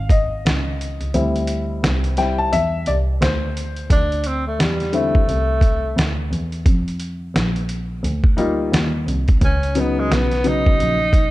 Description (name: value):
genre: hip hop, jazz-hop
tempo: 87 BPM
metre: 4/4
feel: swing 60% on 16ths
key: unclear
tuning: A4 = 439 Hz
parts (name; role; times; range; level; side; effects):
- dark grand piano; accompaniment; 0.0-11.0 s; C#3 to A5; -22 LUFS; left 3 dB; none
- muted double bass; bass; 0.0-11.3 s; G#1 to F2; -22 LUFS; equal; none
- trip hop sampler-style drum kit; drums; 0.1-11.3 s; hi-hat, kick drum, snare drum; -19 LUFS; equal; none
- breathy tenor saxophone; melody; 3.9-11.3 s; G3 to D#4; -21 LUFS; equal; none
room: studio reverb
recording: dark, warm production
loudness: -17 LUFS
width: side -17 dB against mid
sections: 0.0-3.9 A section; 3.9-11.3 B section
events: grand piano solo 0.0-3.9; kick muted 1.1-3.9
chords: 0.0 C#sus2; 1.1 D9sus4; 3.9 D7sus2; 6.7 F9sus4; 9.4 C#9sus4